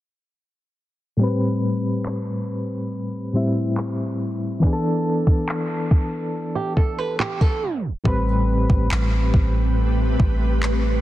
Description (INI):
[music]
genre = contemporary R&B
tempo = 70 BPM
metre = 4/4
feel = straight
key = A minor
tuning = A4 = 440 Hz
[part]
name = soft electric-piano-like synth keys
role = accompaniment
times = 1.2-11.0 s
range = A2 to B4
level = -23 LUFS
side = left 1 dB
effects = chorus, tremolo
[part]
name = smooth R&B drum kit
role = drums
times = 2.1-10.8 s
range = handclaps, kick drum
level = -20 LUFS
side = equal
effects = none
[part]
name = flamenco guitar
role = arpeggios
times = 6.6-7.8 s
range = G4 to B4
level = -26 LUFS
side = right 5 dB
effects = digital delay
[part]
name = ethereal airy pad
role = sustained chords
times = 9.1-11.0 s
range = A3 to B4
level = -27 LUFS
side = equal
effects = ensemble chorus, built-in reverb, tremolo, sidechain pumping
[part]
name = soft 808-style bass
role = bass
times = 8.1-11.0 s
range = A1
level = -21 LUFS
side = equal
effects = none
[sound]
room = light reverb, digital ambience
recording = dense, heavily limited modern master, low-pass filter, tape stop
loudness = -19 LUFS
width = side -14 dB against mid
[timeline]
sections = 1.2-8.1 A section; 8.1-11.0 B section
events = filter sweep 1.2-8.1; tape stop 7.6-8.1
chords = 1.2 Am9; 4.6 E7sus4; 7.6 N.C.; 8.1 Am9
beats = | 1.20 2.05 2.91 3.77 | 4.63 5.48 6.34 7.20 | 8.05 8.91 9.77 10.63